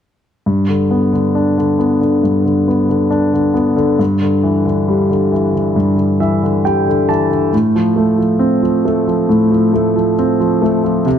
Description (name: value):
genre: pop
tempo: 68 BPM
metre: 4/4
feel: straight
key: unclear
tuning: A4 = 440 Hz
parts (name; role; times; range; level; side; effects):
- clear concert grand piano; accompaniment; 0.5-11.2 s; G2 to A5; -12 LUFS; equal; none
room: moderate echo chamber reverb, RT60 1.7 s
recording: none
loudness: -12 LUFS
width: side -8 dB against mid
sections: 0.5-11.2 A section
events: grand piano fill 5.8-7.5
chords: 0.5 G; 4.0 Em7/G; 7.5 F/A